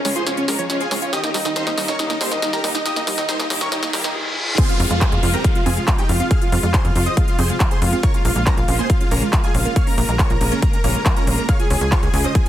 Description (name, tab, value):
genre	uplifting trance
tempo	139 BPM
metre	4/4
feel	straight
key	F minor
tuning	A4 = 440 Hz
part	dense compressed supersaw	melody	0.0-12.5 s	Db4 to F5	-24 LUFS	equal	sidechain pumping, low-pass filter, tape echo
part	plucky unison lead	second line	0.0-12.5 s	Db5 to F6	-29 LUFS	equal	sidechain pumping, digital delay
part	rich symphonic string section	sustained chords	0.0-12.5 s	C3 to G4	-29 LUFS	left 1 dB	sidechain pumping
part	big-room dance drum kit	drums	0.0-12.5 s	crash cymbal, handclaps, hi-hat, snare drum	-24 LUFS	equal	overdrive, high-pass filter on hats, high-pass filter on snare, high-pass filter on cymbals
part	riser, reverse cymbal and downlifter	sound effects	1.5-8.0 s	none	-29 LUFS	equal	none
part	tight sequenced synth	arpeggios	0.1-12.5 s	Eb3 to Ab4	-28 LUFS	right 5 dB	chorus, sidechain pumping, digital delay
part	tight sequencer bass	bass	0.1-12.3 s	Bb1 to F2	-21 LUFS	equal	sidechain pumping, high-pass filter
part	electronic kick drum	drums	4.6-12.4 s	none	-18 LUFS	equal	overdrive
room	light reverb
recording	dense, heavily limited modern master, high-pass filter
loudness	-16 LUFS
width	side -12 dB against mid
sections	0.0-4.6 A section; 4.6-12.5 B section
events	build-up 0.0-4.6; drum fill 0.0-4.2; filter sweep on synth arpeggio sound 0.0-4.6; reverse cymbal 3.7-4.6; drop 4.6-12.5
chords	0.0 Db; 1.1 Eb; 4.6 Fm; 8.0 Bbm7; 11.5 Db